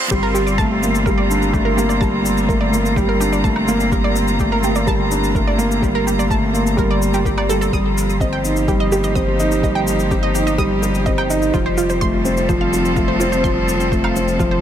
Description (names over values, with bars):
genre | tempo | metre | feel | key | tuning
piano and strings electronica | 126 BPM | 4/4 | straight | G minor | A4 = 440 Hz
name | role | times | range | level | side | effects
clear string quartet | sustained chords | 0.0-14.6 s | F3 to Bb5 | -22 LUFS | equal | sidechain pumping
felt-muted upright piano | riff | 0.0-14.6 s | F3 to G4 | -19 LUFS | right 1 dB | ping-pong delay
wide unison pluck | arpeggios | 0.1-14.6 s | F4 to Eb6 | -24 LUFS | right 2 dB | sidechain pumping, ping-pong delay
round analog bass | bass | 0.1-14.6 s | F1 to G1 | -23 LUFS | left 1 dB | sidechain pumping
electronic kick drum | drums | 0.1-14.5 s | none | -22 LUFS | left 1 dB | studio reverb
shaker and woodblock | drums | 0.1-14.5 s | none | -30 LUFS | left 3 dB | studio reverb
room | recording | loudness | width
light reverb, digital ambience | high-pass filter | -15 LUFS | side -10 dB against mid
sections
0.1-14.6 A section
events
drop 0.1-14.6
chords
0.1 Gmadd9; 7.7 Cm/G; 11.5 F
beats
| 0.11 0.59 1.06 1.54 | 2.02 2.49 2.97 3.44 | 3.92 4.40 4.87 5.35 | 5.83 6.30 6.78 7.25 | 7.73 8.21 8.68 9.16 | 9.64 10.11 10.59 11.06 | 11.54 12.02 12.49 12.97 | 13.45 13.92 14.40